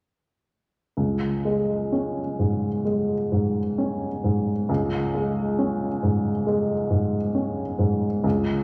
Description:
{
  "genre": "classical",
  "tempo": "63-69 BPM",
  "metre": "4/4",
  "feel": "rubato",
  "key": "unclear",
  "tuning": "A4 = 439 Hz",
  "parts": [
    { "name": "warm baby grand piano", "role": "accompaniment", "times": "1.0-8.6 s", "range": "Db2 to Db4", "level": "-24 LUFS", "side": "equal", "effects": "none" }
  ],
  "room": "wet recital hall reverb, RT60 1.5 s",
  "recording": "none",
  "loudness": "-24 LUFS",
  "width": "mono",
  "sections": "1.0-8.6 A section",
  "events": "none",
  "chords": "1.0 Db5"
}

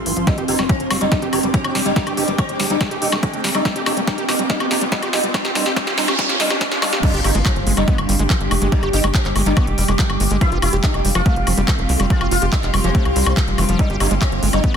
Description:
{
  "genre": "psychedelic trance",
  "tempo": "142 BPM",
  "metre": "4/4",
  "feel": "straight",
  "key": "unclear",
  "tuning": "A4 = 442 Hz",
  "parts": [
    { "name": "sitar", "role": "melody", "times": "0.0-14.8 s", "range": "C4 to A4", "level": "-25 LUFS", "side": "right 1 dB", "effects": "phaser, sidechain pumping, ping-pong delay" },
    { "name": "evolving wavetable pad", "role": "sustained chords", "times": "0.0-14.8 s", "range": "G3 to G4", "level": "-26 LUFS", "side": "right 1 dB", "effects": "phaser, built-in reverb, sidechain pumping" },
    { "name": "tight sequencer bass", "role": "bass", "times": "0.0-14.8 s", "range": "F1 to C2", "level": "-22 LUFS", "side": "equal", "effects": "none" },
    { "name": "riser, noise sweep and impact", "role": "sound effects", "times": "0.0-8.7 s", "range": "none", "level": "-26 LUFS", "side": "equal", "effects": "none" },
    { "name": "airy breathy pad", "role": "texture", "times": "0.0-14.8 s", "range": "C4 to D6", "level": "-27 LUFS", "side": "right 1 dB", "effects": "chorus, sidechain pumping" },
    { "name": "overdriven acid bass", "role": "riff", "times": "0.1-14.8 s", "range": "E3 to G4", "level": "-25 LUFS", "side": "equal", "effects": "distortion, auto-pan, sidechain pumping, ping-pong delay" },
    { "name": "techno drum kit", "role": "drums", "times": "0.1-14.8 s", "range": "crash cymbal, handclaps, hi-hat, snare drum, woodblock", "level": "-22 LUFS", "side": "left 1 dB", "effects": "high-pass filter on hats, studio reverb, high-pass filter on snare, high-pass filter on perc, high-pass filter on cymbals" },
    { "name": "vowel-sweep wobble bass", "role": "second line", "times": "0.3-14.2 s", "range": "G3 to B3", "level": "-35 LUFS", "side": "left 4 dB", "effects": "none" },
    { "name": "electronic kick drum", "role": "drums", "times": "0.3-14.7 s", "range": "none", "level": "-18 LUFS", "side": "equal", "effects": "studio reverb" }
  ],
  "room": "light reverb, digital ambience",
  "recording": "dense, heavily limited modern master, high-pass filter",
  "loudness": "-15 LUFS",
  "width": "side -7 dB against mid",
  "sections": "0.0-7.0 A section; 7.0-14.8 B section",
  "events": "build-up 0.0-7.0; riser 0.0-7.0; filter sweep on acid bass 0.0-7.0; filter sweep on ambient pad 0.0-7.0; filter sweep 0.0-7.0; drum fill 0.3-7.0; noise sweep 5.3-7.0; drop 7.0-14.8; impact 7.0-8.7",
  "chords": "0.3 F5; 7.0 G5; 10.4 F5; 13.8 G5"
}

